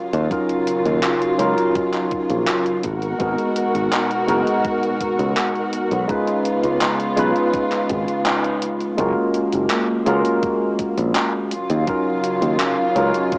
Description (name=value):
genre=vaporwave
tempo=83 BPM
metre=4/4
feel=straight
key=F# major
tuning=A4 = 440 Hz
part: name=dark studio string section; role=sustained chords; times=0.0-13.4 s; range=B2 to A#4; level=-23 LUFS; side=equal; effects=none
part: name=modern bright fingered electric bass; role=bass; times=0.1-13.1 s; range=F#1 to D#2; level=-22 LUFS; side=equal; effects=tube saturation
part: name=gated 80s digital drum machine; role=drums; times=0.1-13.4 s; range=handclaps, hi-hat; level=-24 LUFS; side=equal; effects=gated reverb, vintage 12-bit sampler grit
part: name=barky tine electric piano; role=accompaniment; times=0.3-13.4 s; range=F#3 to B4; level=-20 LUFS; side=equal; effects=overdrive, analog chorus, tape echo
part: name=electronic kick drum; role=drums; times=0.3-13.4 s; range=none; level=-30 LUFS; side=equal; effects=vintage 12-bit sampler grit
room=wet spring reverb, RT60 1.6 s, digital ambience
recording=home recording on cassette, small speaker sound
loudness=-17 LUFS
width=side -29 dB against mid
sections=0.0-9.0 A section; 9.0-13.4 B section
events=band accent 8.3-8.6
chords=0.0 D#m9; 2.8 G#m9; 6.1 C#7; 9.0 F#maj7; 11.5 D#m9